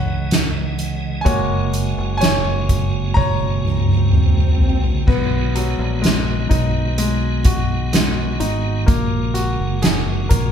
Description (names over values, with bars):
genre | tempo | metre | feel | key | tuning
pop ballad | 63 BPM | 4/4 | straight | B major | A4 = 440 Hz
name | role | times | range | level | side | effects
bright concert grand piano | accompaniment | 0.0-10.5 s | E3 to A#5 | -24 LUFS | left 2 dB | none
tonewheel organ | sustained chords | 0.0-10.5 s | C#3 to D#5 | -26 LUFS | right 3 dB | overdrive, chorus vibrato, fast rotary speaker
fingered electric bass | bass | 0.0-10.5 s | F#1 to C#2 | -22 LUFS | equal | none
swell | sound effects | 3.8-5.1 s | none | -31 LUFS | right 5 dB | none
soft-mallet drum kit | drums | 0.3-10.5 s | crash cymbal, hi-hat, kick drum, snare drum, toms | -18 LUFS | equal | none
room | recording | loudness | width
moderate large studio reverb, RT60 1.2 s | band playing live in one room | -16 LUFS | side -8 dB against mid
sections
0.0-5.1 A section; 5.1-10.5 B section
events
grand piano solo 0.0-5.1; drum fill 3.2-5.1; swell 3.8-5.1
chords
0.0 C#madd9; 1.3 F#add9; 5.1 B6; 8.9 F#add9